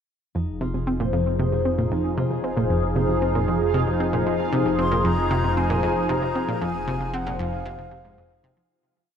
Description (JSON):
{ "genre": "ambient, sequencer-driven space music", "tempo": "115 BPM", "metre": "4/4", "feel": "straight", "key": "F minor", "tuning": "A4 = 440 Hz", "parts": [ { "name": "phased analog pad", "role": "sustained chords", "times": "0.3-8.7 s", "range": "F3 to Ab4", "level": "-26 LUFS", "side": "right 1 dB", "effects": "phaser, chorus, shimmer reverb" }, { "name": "analog pluck", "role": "riff", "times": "0.3-8.6 s", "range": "F2 to C4", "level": "-26 LUFS", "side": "right 1 dB", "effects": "chorus, analog delay" }, { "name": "fat analog bass", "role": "bass", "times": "0.3-8.7 s", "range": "F1", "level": "-29 LUFS", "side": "equal", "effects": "none" }, { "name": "bubbling stepped-filter texture", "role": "texture", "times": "0.6-8.7 s", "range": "F4 to F5", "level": "-38 LUFS", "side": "left 1 dB", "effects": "chorus, built-in reverb, shimmer reverb" }, { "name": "concert harp", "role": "arpeggios", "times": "0.4-9.2 s", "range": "Eb4 to C5", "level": "-29 LUFS", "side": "left 4 dB", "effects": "auto-pan, shimmer reverb, analog delay" }, { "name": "breathy mellow wooden flute", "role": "melody", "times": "4.8-8.4 s", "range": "F5 to C6", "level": "-28 LUFS", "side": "left 3 dB", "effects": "shimmer reverb, analog delay" } ], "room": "wet huge ambient reverb, RT60 8.0 s", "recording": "none", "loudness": "-21 LUFS", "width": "side -8 dB against mid", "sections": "0.3-8.7 A section", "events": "fade-in on synth texture 0.3-8.7; fade-out 5.9-8.7", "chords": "0.3 Fm7", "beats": "| 0.35 0.87 1.39 1.92 | 2.44 2.96 3.48 4.00 | 4.52 5.04 5.57 6.09 | 6.61 7.13 7.65 8.18" }